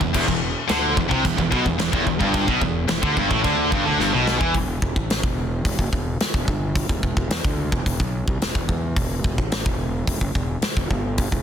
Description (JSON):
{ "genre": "heavy metal", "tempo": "109 BPM", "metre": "4/4", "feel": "straight", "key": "E minor", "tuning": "A4 = 441 Hz", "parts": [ { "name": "distorted electric guitar", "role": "riff", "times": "0.0-4.5 s", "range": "E2 to E3", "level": "-26 LUFS", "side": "equal", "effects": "overdrive" }, { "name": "heavy high-gain guitar", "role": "riff", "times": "0.0-4.5 s", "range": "E2 to E3", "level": "-25 LUFS", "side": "left 11 dB", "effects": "distortion" }, { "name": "scooped high-gain guitar", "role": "riff", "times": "0.0-4.5 s", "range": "E2 to E3", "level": "-25 LUFS", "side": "right 10 dB", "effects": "distortion" }, { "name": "fuzz fingered electric bass", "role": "bass", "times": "0.0-11.4 s", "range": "E1 to E2", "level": "-26 LUFS", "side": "equal", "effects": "overdrive" }, { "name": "big rock drum kit", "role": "drums", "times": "0.0-11.4 s", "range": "china cymbal, crash cymbal, hi-hat, kick drum, snare drum", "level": "-23 LUFS", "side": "equal", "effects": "none" } ], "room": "studio reverb", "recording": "dense, heavily limited modern master", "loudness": "-19 LUFS", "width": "side -8 dB against mid", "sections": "0.0-4.5 A section; 4.5-11.4 B section", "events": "drum fill 4.0-4.5", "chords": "0.0 Em; 4.5 N.C." }